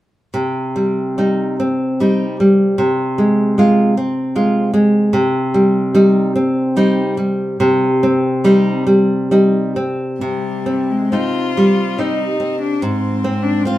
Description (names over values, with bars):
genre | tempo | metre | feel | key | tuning
romantic duo for cello and classical guitar | 63-78 BPM | 3/4 | rubato | C minor | A4 = 441 Hz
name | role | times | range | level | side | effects
nylon-string guitar | accompaniment | 0.3-13.8 s | Ab2 to F4 | -13 LUFS | equal | none
warm cello | melody | 10.2-13.8 s | G3 to F4 | -20 LUFS | left 3 dB | none
room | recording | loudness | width
wet studio reverb, RT60 0.8 s | band playing live in one room | -13 LUFS | side -15 dB against mid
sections
0.3-10.2 A section; 10.2-13.8 B section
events
none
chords
0.3 Cm; 2.8 Fm/C; 5.1 Cm; 12.8 Fm/Ab (rootless)